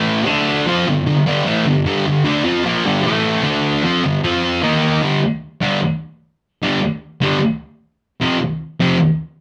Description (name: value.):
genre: rock.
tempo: 151 BPM.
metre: 4/4.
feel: straight.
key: G minor.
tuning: A4 = 440 Hz.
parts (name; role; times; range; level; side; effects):
thick fuzz guitar; solo; 0.0-9.0 s; F2 to F4; -17 LUFS; equal; distortion.
room: moderate studio reverb, RT60 0.6 s.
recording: band playing live in one room.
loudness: -17 LUFS.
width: mono.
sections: 0.0-5.0 A section; 5.0-9.4 B section.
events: none.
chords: 0.3 D5; 0.7 Gm; 3.0 A5; 3.4 D5; 3.8 G5; 4.2 F5; 4.6 Eb5; 5.0 G5; 8.2 F5.